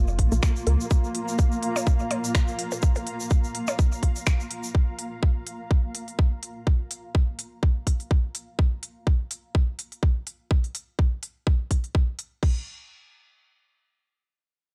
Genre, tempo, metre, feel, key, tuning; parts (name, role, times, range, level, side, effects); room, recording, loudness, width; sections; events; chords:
minimal techno; 125 BPM; 4/4; swing 55% on 16ths; A4 = 440 Hz
saturated sub bass; bass; 0.0-0.8 s; F1 to Db2; -24 LUFS; equal; tube saturation, sidechain pumping
granular cloud pad; texture; 0.0-8.6 s; Bb3 to Bb5; -35 LUFS; equal; built-in reverb, sidechain pumping
egg shaker; percussion; 0.1-4.7 s; -40 LUFS; equal
electronic kick drum; drums; 0.2-12.5 s; -24 LUFS; equal; small room ambience
minimal click drum kit; drums; 0.2-12.5 s; crash cymbal, finger snaps, hi-hat; -34 LUFS; equal; small room ambience
hollow square pluck; riff; 0.3-0.7 s; Bb3 to Bb4; -34 LUFS; equal; chorus, sidechain pumping, tape echo
percussion blips; percussion; 1.8-3.8 s; -33 LUFS; equal; small room ambience, analog delay
digital ambience; dry, gritty hardware recording, cassette tape; -25 LUFS; mono
0.0-12.4 A section; 12.4-14.7 B section
fade-out on ambient pad 0.0-8.6
0.0 Bb5; 12.4 N.C.